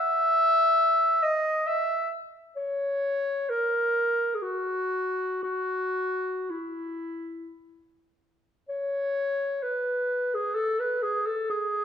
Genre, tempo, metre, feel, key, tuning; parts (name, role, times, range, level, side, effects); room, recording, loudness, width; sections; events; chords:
classical, free, expressive piece for unaccompanied clarinet; 47-70 BPM; 3/4; rubato; E major; A4 = 440 Hz
clear clarinet; solo; 0.0-11.8 s; E4 to E5; -24 LUFS; equal
wet recital hall reverb, RT60 1.4 s; -24 LUFS; side -8 dB against mid
0.0-8.7 A section; 8.7-11.8 A section